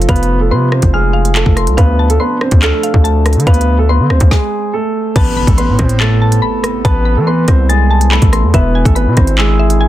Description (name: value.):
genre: hip hop, drill.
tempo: 142 BPM.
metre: 4/4.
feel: half-time.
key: A harmonic minor.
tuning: A4 = 440 Hz.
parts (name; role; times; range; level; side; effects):
dark baby grand piano; melody; 0.0-9.9 s; G#3 to C5; -16 LUFS; right 2 dB; low-pass filter, ping-pong delay.
mallet-like synth pluck; accompaniment; 0.0-9.9 s; E5 to A6; -21 LUFS; left 2 dB; chorus, low-pass filter.
mellow French horn section; sustained chords; 0.0-9.9 s; A2 to F4; -23 LUFS; right 4 dB; stereo widening.
distorted 808-style bass; bass; 0.0-9.9 s; E1 to E3; -12 LUFS; equal; distortion.
drill drum kit; drums; 0.0-9.8 s; crash cymbal, handclaps, hi-hat, kick drum, rim click, snare drum; -12 LUFS; equal; none.
impact; sound effects; 5.3-6.8 s; none; -22 LUFS; equal; none.
room: little or no reverb.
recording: dense, heavily limited modern master.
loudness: -9 LUFS.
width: side -14 dB against mid.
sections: 0.0-5.2 A section; 5.2-9.9 B section.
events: stop 4.3-5.2; impact 5.2-6.8.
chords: 0.0 F; 1.8 Dm7; 5.2 Amadd9; 8.5 E7.